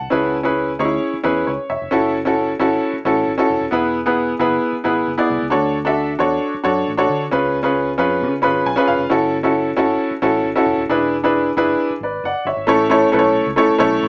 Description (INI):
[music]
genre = uptempo 1960s-style soul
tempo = 134 BPM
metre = 4/4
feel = straight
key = A major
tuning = A4 = 439 Hz
[part]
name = bright upright piano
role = accompaniment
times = 0.0-14.1 s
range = A3 to B5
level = -18 LUFS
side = equal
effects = none
[part]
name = vintage muted fingered electric bass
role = bass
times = 0.0-14.1 s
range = D#1 to D3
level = -33 LUFS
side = equal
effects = none
[sound]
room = moderate small room ambience, RT60 0.5 s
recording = small speaker sound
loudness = -18 LUFS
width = mono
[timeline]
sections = 0.0-12.7 A section; 12.7-14.1 B section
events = upright piano fill 8.2-9.1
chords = 0.1 C#m7; 1.9 F#m7; 3.7 E; 5.5 Dmaj7; 7.3 C#7; 9.1 F#m7; 10.9 E7; 12.7 A